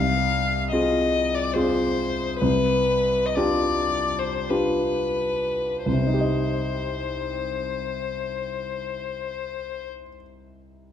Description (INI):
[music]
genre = classical, slow romantic movement for piano trio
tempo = 40-72 BPM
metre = 3/4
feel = rubato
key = C minor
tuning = A4 = 441 Hz
[part]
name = rich violin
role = melody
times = 0.0-9.9 s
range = B4 to F5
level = -25 LUFS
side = left 4 dB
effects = none
[part]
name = warm grand piano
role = accompaniment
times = 0.0-10.9 s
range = C2 to Eb5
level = -24 LUFS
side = equal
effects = none
[sound]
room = wet recital hall reverb, RT60 1.8 s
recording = dark, warm production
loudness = -22 LUFS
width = side -9 dB against mid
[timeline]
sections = 0.0-5.8 A section; 5.8-9.5 B section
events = slowing down 0.0-5.8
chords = 0.0 Fm/C; 2.4 G7/C; 5.8 Cm